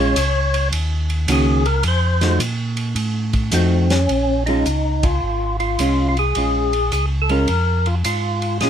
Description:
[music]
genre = soul jazz organ trio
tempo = 106 BPM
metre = 4/4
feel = swing 67% on 8ths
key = Bb minor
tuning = A4 = 437 Hz
[part]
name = percussive tonewheel organ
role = melody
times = 0.0-8.7 s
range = C4 to Db5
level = -21 LUFS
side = left 1 dB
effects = slow rotary speaker, overdrive
[part]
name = hollow-body jazz guitar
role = accompaniment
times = 0.0-8.7 s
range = Eb3 to Gb4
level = -20 LUFS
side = right 2 dB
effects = none
[part]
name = mellow tonewheel organ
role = bass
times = 0.0-8.7 s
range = Ab1 to Bb2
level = -20 LUFS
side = equal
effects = slow rotary speaker
[part]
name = warm soul drum kit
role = drums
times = 0.2-8.7 s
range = hi-hat, kick drum, ride cymbal, snare drum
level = -26 LUFS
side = right 1 dB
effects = none
[sound]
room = light reverb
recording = minimal, uncompressed stereo recording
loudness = -16 LUFS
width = side -9 dB against mid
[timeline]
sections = 0.0-4.1 A section; 4.1-8.7 B section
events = tonewheel organ solo 0.0-4.1; band accent 4.9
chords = 0.0 Bbm7; 0.7 Ebm7; 1.9 F7b9; 4.1 Bbm7

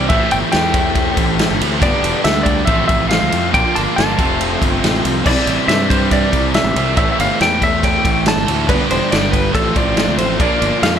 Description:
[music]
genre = classic rock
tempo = 140 BPM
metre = 4/4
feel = straight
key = unclear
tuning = A4 = 440 Hz
[part]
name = clean lap steel guitar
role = melody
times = 0.0-11.0 s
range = A4 to A5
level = -19 LUFS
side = equal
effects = none
[part]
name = tonewheel organ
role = sustained chords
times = 0.0-11.0 s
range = A3 to D5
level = -29 LUFS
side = equal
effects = none
[part]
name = biting overdriven guitar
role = riff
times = 0.0-11.0 s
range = F2 to C4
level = -21 LUFS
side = right 15 dB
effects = none
[part]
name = distorted electric guitar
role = riff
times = 0.0-11.0 s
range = F2 to G4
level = -21 LUFS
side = left 15 dB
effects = overdrive
[part]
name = fuzz fingered electric bass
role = bass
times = 0.0-11.0 s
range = E1 to G2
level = -21 LUFS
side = equal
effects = overdrive
[part]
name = vintage drum kit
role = drums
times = 0.1-10.9 s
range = crash cymbal, kick drum, ride cymbal, snare drum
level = -18 LUFS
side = equal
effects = none
[part]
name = cowbell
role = percussion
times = 5.3-10.9 s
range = none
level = -29 LUFS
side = right 12 dB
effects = none
[sound]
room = small room ambience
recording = none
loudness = -13 LUFS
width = side -8 dB against mid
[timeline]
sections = 0.0-11.0 A section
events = none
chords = 0.1 Am7; 1.8 Gadd9; 2.7 F/A; 3.5 Bb; 4.2 F; 5.3 Cadd9; 7.0 Am7; 8.7 Gadd9; 9.5 F/A; 10.4 Bb

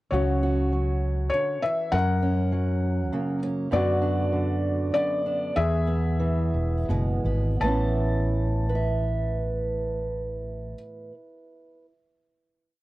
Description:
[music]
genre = acoustic folk-pop ballad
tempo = 83-100 BPM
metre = 3/4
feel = straight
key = A major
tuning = A4 = 439 Hz
[part]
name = felt-muted upright piano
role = melody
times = 0.1-10.7 s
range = F#4 to A5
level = -28 LUFS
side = left 2 dB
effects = none
[part]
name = fingerpicked old ladder-braced acoustic guitar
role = accompaniment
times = 0.1-11.9 s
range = E2 to E5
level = -29 LUFS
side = right 2 dB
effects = none
[part]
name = fretless electric bass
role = bass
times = 0.1-10.7 s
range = E1 to F#2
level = -25 LUFS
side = equal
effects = lush chorus
[sound]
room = little or no reverb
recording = dry, close 1970s-style studio recording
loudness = -23 LUFS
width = side -17 dB against mid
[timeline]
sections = 0.1-7.6 pre-chorus; 7.6-11.9 final chord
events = slowing down 3.7-7.6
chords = 0.1 C#sus4; 1.9 F#; 3.7 Bm/F#; 5.6 E; 7.6 Aadd9

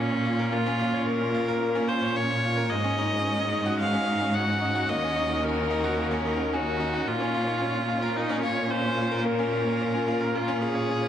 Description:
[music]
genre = piano and strings electronica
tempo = 110 BPM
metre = 4/4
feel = straight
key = Bb minor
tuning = A4 = 440 Hz
[part]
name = rich viola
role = melody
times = 0.0-11.1 s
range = Db4 to Gb5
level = -28 LUFS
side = left 1 dB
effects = none
[part]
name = warm studio string section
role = sustained chords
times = 0.0-11.1 s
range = Bb2 to Gb4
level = -31 LUFS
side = right 2 dB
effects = none
[part]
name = bright grand piano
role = riff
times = 0.0-11.1 s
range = Ab3 to Db5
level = -29 LUFS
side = left 1 dB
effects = none
[part]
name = rich symphonic cello section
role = bass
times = 0.0-11.1 s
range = Eb2 to Bb2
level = -30 LUFS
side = right 1 dB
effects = none
[sound]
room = moderate huge ambient reverb, RT60 8.1 s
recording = none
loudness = -24 LUFS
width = side -9 dB against mid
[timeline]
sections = 0.0-11.1 A section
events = none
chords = 0.0 Bbm; 2.7 Ab7sus4; 4.9 Ebm7; 7.1 Bbm

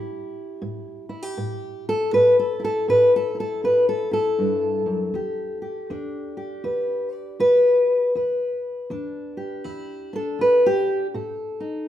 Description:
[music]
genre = acoustic country blues, solo or duo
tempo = 80 BPM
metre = 4/4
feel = swing 62% on 8ths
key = E minor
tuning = A4 = 436 Hz
[part]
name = fingerpicked steel-string acoustic guitar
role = solo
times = 0.0-11.9 s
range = E2 to D5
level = -20 LUFS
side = left 1 dB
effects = none
[sound]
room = wet large studio reverb, RT60 1.2 s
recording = band playing live in one room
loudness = -19 LUFS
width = side -11 dB against mid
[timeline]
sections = 0.0-11.9 A section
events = steel-string acoustic guitar solo 0.0-11.9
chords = 0.0 A5; 5.1 Em7; 11.2 B7

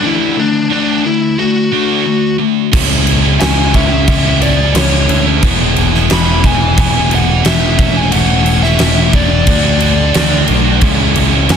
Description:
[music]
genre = quiet-loud alternative rock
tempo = 89 BPM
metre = 4/4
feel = straight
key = unclear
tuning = A4 = 439 Hz
[part]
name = biting lead guitar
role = melody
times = 0.0-11.6 s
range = D4 to B5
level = -18 LUFS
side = left 2 dB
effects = overdrive, analog delay
[part]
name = crunchy overdriven guitar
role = riff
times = 0.0-11.6 s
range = C#3 to F#4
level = -17 LUFS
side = left 11 dB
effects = none
[part]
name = high-gain distorted guitar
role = riff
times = 0.0-11.6 s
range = C#3 to F#4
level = -16 LUFS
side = right 15 dB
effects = distortion
[part]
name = growling picked electric bass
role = bass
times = 2.7-11.6 s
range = E1 to F#2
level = -14 LUFS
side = right 1 dB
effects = overdrive
[part]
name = huge arena drum kit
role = drums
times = 2.7-11.6 s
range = crash cymbal, kick drum, snare drum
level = -14 LUFS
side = equal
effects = none
[sound]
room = studio reverb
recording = dense, heavily limited modern master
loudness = -9 LUFS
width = side -7 dB against mid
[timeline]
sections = 0.0-2.7 A section; 2.7-11.6 B section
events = break 0.0-2.7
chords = 0.0 D; 2.7 C#m; 5.4 E; 7.8 A/E; 9.5 D; 10.8 C#m

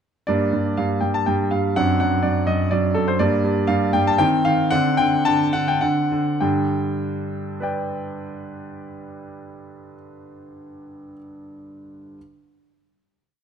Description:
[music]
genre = classical-period piano sonatina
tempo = 98-126 BPM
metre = 3/4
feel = straight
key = unclear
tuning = A4 = 441 Hz
[part]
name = clear concert grand piano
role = solo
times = 0.3-12.2 s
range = F#2 to A5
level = -20 LUFS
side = equal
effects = none
[sound]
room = moderate recital hall reverb, RT60 1.6 s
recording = close, detailed microphones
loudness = -18 LUFS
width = side -7 dB against mid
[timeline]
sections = 0.3-6.4 theme; 6.4-10.0 final chord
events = slowing down 2.5-6.4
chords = 0.3 Gm; 1.7 D7/F#; 3.2 Gm; 4.2 Cm/Eb; 4.7 D7; 6.4 G

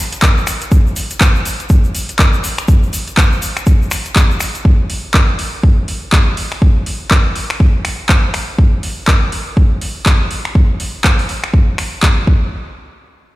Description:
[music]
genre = house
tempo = 122 BPM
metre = 4/4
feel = swing 59% on 16ths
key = none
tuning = none
[part]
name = deep house drum kit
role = drums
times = 0.1-12.1 s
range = finger snaps, handclaps, hi-hat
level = -18 LUFS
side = equal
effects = overdrive
[part]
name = egg shaker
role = percussion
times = 0.1-4.6 s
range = none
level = -27 LUFS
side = left 4 dB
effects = none
[part]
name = electronic kick drum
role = drums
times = 0.2-12.4 s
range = none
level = -11 LUFS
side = equal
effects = overdrive
[sound]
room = little or no reverb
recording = played on a big sound system in a bare room, stone room reverb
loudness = -11 LUFS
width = side -18 dB against mid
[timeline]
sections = 0.0-12.5 A section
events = none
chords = none

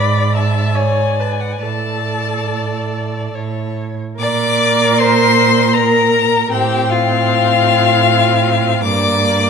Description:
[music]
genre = classical, slow romantic movement for string quartet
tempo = 68-82 BPM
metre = 3/4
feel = rubato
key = unclear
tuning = A4 = 440 Hz
[part]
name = rich violin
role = melody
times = 0.0-9.5 s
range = F5 to D6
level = -17 LUFS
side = left 9 dB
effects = none
[part]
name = rich violin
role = second line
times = 0.0-9.5 s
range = F4 to D5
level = -19 LUFS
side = left 3 dB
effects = none
[part]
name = rich viola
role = accompaniment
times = 0.0-9.5 s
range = Bb3 to E5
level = -19 LUFS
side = right 2 dB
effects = none
[part]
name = rich cello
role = bass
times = 0.0-9.5 s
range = G2 to Bb2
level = -18 LUFS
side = right 5 dB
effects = none
[sound]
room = wet recital hall reverb, RT60 1.4 s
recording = none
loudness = -12 LUFS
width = side -6 dB against mid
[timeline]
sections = 0.0-4.2 A section; 4.2-9.5 B section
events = none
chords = 0.0 G#dim; 1.6 D5/A; 4.2 Bb; 6.5 F/A; 8.8 Gm

